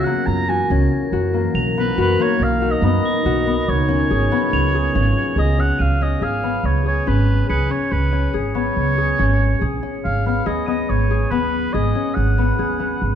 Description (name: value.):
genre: contemporary instrumental, chamber music in an uneven meter.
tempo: 141 BPM.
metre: 5/4.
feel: straight.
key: Db mixolydian.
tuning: A4 = 439 Hz.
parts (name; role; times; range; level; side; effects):
warm oboe; melody; 0.0-13.2 s; Cb5 to Bb5; -23 LUFS; right 2 dB; none.
deep dark ambient pad; sustained chords; 0.0-5.8 s; Cb3 to Bb4; -26 LUFS; equal; chorus, built-in reverb.
concert harp; arpeggios; 0.0-13.2 s; Bb3 to Ab4; -22 LUFS; left 5 dB; none.
crotales; texture; 0.0-11.5 s; Bb6 to Ab7; -33 LUFS; right 1 dB; none.
upright bass; bass; 0.3-13.2 s; Ab1 to Gb2; -20 LUFS; right 2 dB; none.
room: moderate scoring stage reverb, RT60 1.6 s.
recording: dark, warm production.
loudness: -16 LUFS.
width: side -9 dB against mid.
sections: 0.0-5.8 A section; 5.8-13.2 B section.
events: none.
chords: 0.0 Gb7; 1.5 Cbmaj7; 3.7 Db7; 5.8 Db7(no3); 10.0 Abm7.